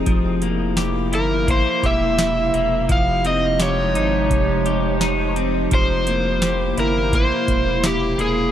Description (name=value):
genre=dream pop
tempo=85 BPM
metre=4/4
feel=straight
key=unclear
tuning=A4 = 441 Hz
part: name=warbly tape-like pad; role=sustained chords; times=0.0-8.5 s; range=C3 to G4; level=-24 LUFS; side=equal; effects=chorus, built-in reverb, shimmer reverb
part: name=electric guitar at the edge of break-up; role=arpeggios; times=0.0-8.5 s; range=F3 to G4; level=-24 LUFS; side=left 4 dB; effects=analog chorus, digital delay, shimmer reverb
part: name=saturated sub bass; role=bass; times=0.0-8.5 s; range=E1 to Ab1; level=-25 LUFS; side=equal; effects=none
part: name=booming analog drum machine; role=drums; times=0.1-8.4 s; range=hi-hat, kick drum, snare drum, tambourine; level=-21 LUFS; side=equal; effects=none
part: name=overdriven slide guitar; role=melody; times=1.1-8.5 s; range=G4 to F5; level=-21 LUFS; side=right 1 dB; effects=digital delay, shimmer reverb
room=light reverb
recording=none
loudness=-17 LUFS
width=side -10 dB against mid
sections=0.0-8.5 A section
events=none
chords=0.1 C7/F; 2.9 Dbmaj9#11/F; 5.7 C7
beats=| 0.07 0.78 1.48 2.19 | 2.89 3.60 4.30 5.01 | 5.72 6.42 7.13 7.83